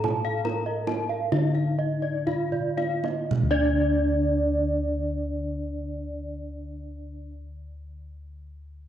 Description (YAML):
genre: Balinese gamelan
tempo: 55-75 BPM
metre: 4/4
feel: straight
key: D pelog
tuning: A4 = 440 Hz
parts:
  - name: gamelan-type bronze metallophone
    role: melody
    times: 0.0-7.3 s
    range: D4 to Bb4-20c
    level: -30 LUFS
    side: right 1 dB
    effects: cassette tape
  - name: gamelan-type bronze metallophone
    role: arpeggios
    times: 0.0-7.3 s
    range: D5 to Bb5-20c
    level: -33 LUFS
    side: left 7 dB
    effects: cassette tape
  - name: gamelan-type bronze metallophone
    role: arpeggios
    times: 0.0-7.3 s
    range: D5 to A5-30c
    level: -31 LUFS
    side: right 5 dB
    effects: cassette tape
  - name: gamelan-type bossed gongs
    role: bass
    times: 0.0-7.2 s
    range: D2 to A4-30c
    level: -29 LUFS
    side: left 2 dB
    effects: none
  - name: kendang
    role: percussion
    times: 0.0-3.8 s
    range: none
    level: -30 LUFS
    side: right 5 dB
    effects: none
room: moderate lush hall reverb, RT60 2.3 s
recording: home recording on cassette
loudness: -24 LUFS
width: side -10 dB against mid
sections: 0.0-3.3 A section; 3.3-7.7 B section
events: slowing down 0.0-3.3; drum fill 2.5-3.3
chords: none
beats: 0.45 1.32 2.27 | 3.31 4.40 5.49 6.58